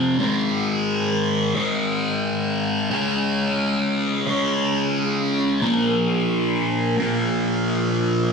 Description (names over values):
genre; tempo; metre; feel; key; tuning
rock; 88 BPM; 4/4; straight; unclear; A4 = 440 Hz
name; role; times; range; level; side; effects
fuzz guitar; solo; 0.0-8.3 s; F2 to Db4; -19 LUFS; equal; distortion, phaser
room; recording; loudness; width
wet stone room reverb, RT60 1.4 s; rough rehearsal-room recording; -19 LUFS; side -5 dB against mid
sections
0.0-8.3 A section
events
none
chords
0.2 Ab5; 2.9 Db5; 5.6 Bb5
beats
| 0.21 0.89 1.57 2.25 | 2.92 3.60 4.28 4.96 | 5.63 6.31 6.99 7.67